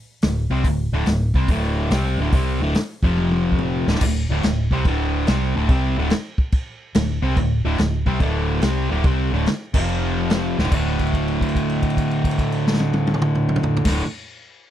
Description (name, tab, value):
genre	blues rock power trio and southern rock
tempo	143 BPM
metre	4/4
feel	swing 66% on 8ths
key	unclear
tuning	A4 = 440 Hz
part	cranked stack guitar	riff	0.2-14.0 s	D2 to C4	-21 LUFS	equal	overdrive
part	vintage muted fingered electric bass	bass	0.2-14.0 s	D1 to C2	-23 LUFS	equal	none
part	vintage drum kit	drums	0.2-13.9 s	crash cymbal, hi-hat, kick drum, snare drum, toms	-22 LUFS	equal	none
room	little or no reverb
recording	dry, close 1970s-style studio recording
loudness	-18 LUFS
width	side -11 dB against mid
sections	0.0-4.0 A section; 4.0-10.7 A section; 10.7-14.1 B section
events	drum fill 3.2-4.0, 10.5; held note 10.7-13.8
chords	0.0 D5; 3.0 F5; 3.8 D5; 9.7 F5; 10.5 D5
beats	0.23 | 0.65 1.07 1.49 1.91 | 2.34 2.76 3.18 3.60 | 4.02 4.44 4.86 5.28 | 5.70 6.12 6.54 6.95 | 7.37 7.79 8.21 8.63 | 9.04 9.46 9.88 10.30 | 10.72 11.13 11.55 11.97 | 12.38 12.80 13.22 13.64